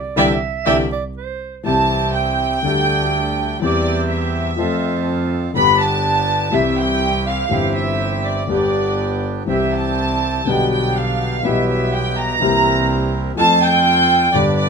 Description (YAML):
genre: tango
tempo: 123 BPM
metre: 4/4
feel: rubato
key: C major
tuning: A4 = 440 Hz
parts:
  - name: mellow clarinet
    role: second line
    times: 0.0-1.6 s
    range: C5 to E5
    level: -23 LUFS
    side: right 9 dB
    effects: none
  - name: warm studio violin section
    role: second line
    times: 0.2-14.7 s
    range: D5 to B5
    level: -18 LUFS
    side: right 1 dB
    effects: none
  - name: dark concert grand piano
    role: accompaniment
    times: 0.2-14.7 s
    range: G1 to A4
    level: -20 LUFS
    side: left 4 dB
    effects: none
  - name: bandoneon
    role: stabs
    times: 0.2-14.7 s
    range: A3 to B4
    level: -25 LUFS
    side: right 6 dB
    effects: none
  - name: clear double bass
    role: bass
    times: 0.2-14.7 s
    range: G1 to F2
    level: -23 LUFS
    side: right 2 dB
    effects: none
room: moderate studio reverb, RT60 0.6 s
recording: minimal, uncompressed stereo recording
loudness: -15 LUFS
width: side -5 dB against mid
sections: 0.0-1.7 A section; 1.7-14.7 A section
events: band accent 0.0-1.7; violin section solo 0.0-1.7, 1.7-14.7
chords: 0.0 Cadd9; 1.7 C; 2.6 Gsus2/D; 3.6 C/E; 4.6 F; 5.6 G; 6.5 C; 7.5 C/G; 8.5 G; 9.5 C; 10.5 G/B; 11.4 Em/B; 12.4 C7; 13.4 F